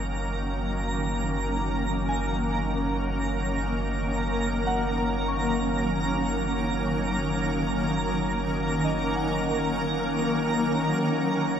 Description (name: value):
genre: ambient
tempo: 57 BPM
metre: 4/4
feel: straight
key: F# major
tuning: A4 = 440 Hz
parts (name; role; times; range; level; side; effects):
- shimmering ambient pad; sustained chords; 0.0-11.6 s; D#3 to A#4; -26 LUFS; equal; chorus, built-in reverb
- soft synth bell; arpeggios; 0.0-11.6 s; A#4 to C#6; -37 LUFS; left 1 dB; chorus, diffuse ambient delay
- warm sub bass; bass; 0.0-11.6 s; F#1; -33 LUFS; equal; none
- twinkling granular texture; texture; 0.0-11.6 s; A#5; -34 LUFS; right 2 dB; built-in reverb
room: wet huge ambient reverb, RT60 7.5 s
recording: none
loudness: -24 LUFS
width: side -8 dB against mid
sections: 0.0-11.6 A section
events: none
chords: 0.0 F#add9